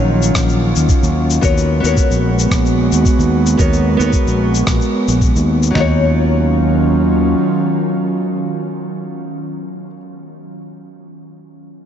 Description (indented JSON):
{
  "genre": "sunset chillout",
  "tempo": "111 BPM",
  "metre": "4/4",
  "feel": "straight",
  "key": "Eb minor",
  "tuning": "A4 = 441 Hz",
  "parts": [
    { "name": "nylon-string guitar", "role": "accompaniment", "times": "0.0-10.0 s", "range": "Gb3 to Db5", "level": "-22 LUFS", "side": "moving between left 5 dB and right 3 dB", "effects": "auto-pan, analog delay" },
    { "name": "airy breathy pad", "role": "sustained chords", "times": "0.0-10.0 s", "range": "Eb3 to Gb4", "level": "-18 LUFS", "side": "right 1 dB", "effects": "chorus" },
    { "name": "overdriven fingered electric bass", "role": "bass", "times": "0.0-7.3 s", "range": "Bb1 to Eb2", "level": "-15 LUFS", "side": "equal", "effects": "none" },
    { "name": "electronic shaker and rim click", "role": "drums", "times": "0.2-5.7 s", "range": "none", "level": "-25 LUFS", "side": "left 3 dB", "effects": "none" },
    { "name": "dusty soul sampler-style drum kit", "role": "drums", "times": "0.4-5.9 s", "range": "kick drum, snare drum, toms", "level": "-16 LUFS", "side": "equal", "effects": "none" }
  ],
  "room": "wet huge ambient reverb, RT60 8.4 s",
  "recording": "dreamy mix soaked in reverb, nothing above 8.0 kHz",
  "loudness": "-12 LUFS",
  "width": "side -9 dB against mid",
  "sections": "0.0-5.8 A section; 5.8-10.1 B section",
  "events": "none",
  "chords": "0.0 Ebm9; 1.4 Abm11; 5.8 Ebm9"
}